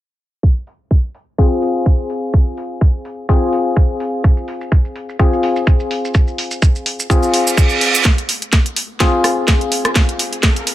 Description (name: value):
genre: bass house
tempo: 126 BPM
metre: 4/4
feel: swing 56% on 16ths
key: F minor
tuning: A4 = 441 Hz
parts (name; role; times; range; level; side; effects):
- electronic kick drum; drums; 0.4-10.5 s; none; -12 LUFS; equal; none
- garage drum kit; drums; 0.7-10.7 s; hi-hat, rim click, snare drum; -18 LUFS; equal; none
- percussive organ stab; stabs; 1.4-10.7 s; C4 to Ab4; -19 LUFS; left 2 dB; analog chorus, cassette tape, sidechain pumping, digital delay
- maracas; percussion; 4.2-8.0 s; none; -23 LUFS; right 4 dB; none
- reverse cymbal and riser; sound effects; 7.3-10.7 s; none; -20 LUFS; right 5 dB; none
room: light reverb, digital ambience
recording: low-pass filter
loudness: -13 LUFS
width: side -14 dB against mid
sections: 0.4-8.1 A section; 8.1-10.7 B section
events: filter sweep 0.4-8.1; reverse cymbal 7.3-8.1; build-up 8.1-10.7; drum fill 8.1-10.7; riser 8.1-10.7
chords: 0.4 Fm